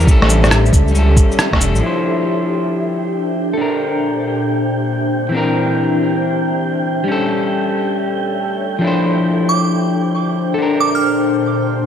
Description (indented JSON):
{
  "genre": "future garage",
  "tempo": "137 BPM",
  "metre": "4/4",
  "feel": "swing 66% on 16ths",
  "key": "D minor",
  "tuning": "A4 = 441 Hz",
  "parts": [
    { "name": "electric guitar at the edge of break-up", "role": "accompaniment", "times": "0.0-11.9 s", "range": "E3 to C5", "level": "-18 LUFS", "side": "left 2 dB", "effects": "spring reverb, sidechain pumping, low-pass filter, tape echo" },
    { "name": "ethereal airy pad", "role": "sustained chords", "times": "0.0-11.9 s", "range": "Bb2 to E5", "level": "-20 LUFS", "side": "left 1 dB", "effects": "ensemble chorus, built-in reverb, sidechain pumping" },
    { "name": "dark detuned saw bass", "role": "bass", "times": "0.0-1.8 s", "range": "E1 to C#2", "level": "-13 LUFS", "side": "equal", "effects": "sidechain pumping" },
    { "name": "electronic shaker, rim click and cabasa", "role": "drums", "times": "0.0-1.8 s", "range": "none", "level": "-17 LUFS", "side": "equal", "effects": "none" },
    { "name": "electronic kick drum", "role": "drums", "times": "0.1-1.6 s", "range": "none", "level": "-12 LUFS", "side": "equal", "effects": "none" },
    { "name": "wind-like tuned noise texture", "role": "texture", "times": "2.6-11.9 s", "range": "G5", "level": "-26 LUFS", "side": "right 6 dB", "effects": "built-in reverb" },
    { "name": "glassy synth bell", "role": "melody", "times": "9.5-11.2 s", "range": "D6 to F6", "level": "-20 LUFS", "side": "right 5 dB", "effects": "chorus, phaser, tape echo" }
  ],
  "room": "moderate lush hall reverb, RT60 1.7 s, digital ambience",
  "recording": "none",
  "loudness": "-14 LUFS",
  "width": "side -8 dB against mid",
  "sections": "0.0-1.8 A section; 1.8-11.9 B section",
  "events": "filter sweep on ambient pad 1.8-11.9",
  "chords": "0.1 A7; 1.8 Dm9; 3.6 Bbmaj7; 5.3 C9; 7.1 A7; 8.8 Dm9; 10.6 Bbmaj7",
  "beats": "| 0.07 0.51 0.95 1.39 | 1.82 2.26 2.70 3.14 | 3.58 4.01 4.45 4.89 | 5.33 5.77 6.20 6.64 | 7.08 7.52 7.96 8.39 | 8.83 9.27 9.71 10.14 | 10.58 11.02 11.46"
}